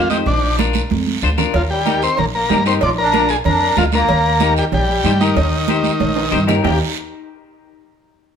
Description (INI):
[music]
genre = latin, cumbia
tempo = 188 BPM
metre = 4/4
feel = straight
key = Eb major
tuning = A4 = 441 Hz
[part]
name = combo organ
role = melody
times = 0.0-6.8 s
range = D4 to D5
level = -18 LUFS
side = left 2 dB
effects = none
[part]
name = accordion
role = second line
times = 0.0-6.8 s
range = Eb3 to F4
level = -23 LUFS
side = right 1 dB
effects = light tremolo tuning
[part]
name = upright bass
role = bass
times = 0.0-6.8 s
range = Bb1 to G2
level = -19 LUFS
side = equal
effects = none
[part]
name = semi-hollow electric guitar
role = accompaniment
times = 0.1-6.8 s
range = D4 to C5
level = -22 LUFS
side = left 7 dB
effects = spring reverb
[part]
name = congas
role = percussion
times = 0.1-6.7 s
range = none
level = -23 LUFS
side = right 8 dB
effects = none
[part]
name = guiro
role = percussion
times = 0.1-6.7 s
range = none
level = -27 LUFS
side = right 7 dB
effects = none
[part]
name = cowbell and timbales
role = percussion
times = 1.5-6.7 s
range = none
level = -24 LUFS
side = right 6 dB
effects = none
[sound]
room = wet studio reverb, RT60 0.6 s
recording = band playing live in one room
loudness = -14 LUFS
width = side -7 dB against mid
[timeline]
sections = 0.0-6.6 A section; 6.6-7.9 B section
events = drum fill 0.7-1.5, 6.0-6.6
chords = 0.3 Bb; 1.5 Eb; 2.8 Bb; 4.1 Eb